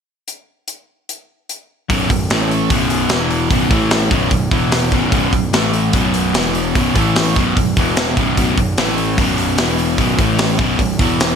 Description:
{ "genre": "hard rock", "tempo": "148 BPM", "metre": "4/4", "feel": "straight", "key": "unclear", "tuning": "A4 = 439 Hz", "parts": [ { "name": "tight metal drum kit", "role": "drums", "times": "0.3-11.3 s", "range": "hi-hat, kick drum, snare drum", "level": "-18 LUFS", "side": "equal", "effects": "gated reverb" }, { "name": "cranked stack guitar", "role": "riff", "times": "1.9-11.4 s", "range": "B1 to A3", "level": "-20 LUFS", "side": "right 11 dB", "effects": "overdrive, wide subtle chorus" }, { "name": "overdriven semi-hollow guitar", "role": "riff", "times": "1.9-11.4 s", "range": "B1 to A3", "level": "-18 LUFS", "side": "left 10 dB", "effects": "none" }, { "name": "fuzz picked electric bass", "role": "bass", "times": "1.9-11.4 s", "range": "B0 to A1", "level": "-22 LUFS", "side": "right 1 dB", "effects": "overdrive" } ], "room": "light reverb, small room ambience", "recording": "bright 1980s-style digital production", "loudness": "-13 LUFS", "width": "side -7 dB against mid", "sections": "0.3-1.9 A section; 1.9-11.4 B section", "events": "none", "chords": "0.3 N.C.; 1.9 B5; 2.3 A5; 2.7 B5; 3.1 E5; 3.5 B5; 3.7 A5; 4.1 B5; 4.5 E5; 4.9 B5; 5.5 A5; 5.9 B5; 6.3 E5; 6.8 B5; 7.0 A5; 7.4 B5; 7.8 E5; 8.2 B5; 8.8 A5; 9.2 B5; 9.6 E5; 10.0 B5; 10.2 A5; 10.6 B5" }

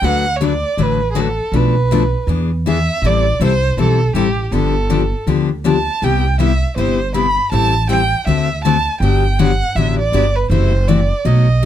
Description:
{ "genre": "acoustic string swing (jazz manouche)", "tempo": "160 BPM", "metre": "4/4", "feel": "swing 62% on 8ths", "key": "unclear", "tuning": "A4 = 440 Hz", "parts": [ { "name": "warm violin", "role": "melody", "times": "0.0-11.7 s", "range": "G4 to B5", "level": "-19 LUFS", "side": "right 3 dB", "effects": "none" }, { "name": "picked steel-string acoustic guitar", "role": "accompaniment", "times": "0.0-11.7 s", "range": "B2 to B4", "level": "-17 LUFS", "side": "left 7 dB", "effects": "none" }, { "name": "upright bass", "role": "bass", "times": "0.0-11.7 s", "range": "F#1 to E2", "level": "-17 LUFS", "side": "right 1 dB", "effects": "none" } ], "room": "light reverb", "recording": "close, detailed microphones", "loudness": "-13 LUFS", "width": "side -11 dB against mid", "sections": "0.0-11.7 A section", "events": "none", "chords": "0.0 D6; 1.5 Bm7b5; 2.3 E7; 3.0 Am7; 4.5 G7; 6.0 Cmaj7; 7.5 Am7; 8.3 D7; 9.0 Gmaj7; 10.5 F#m7b5" }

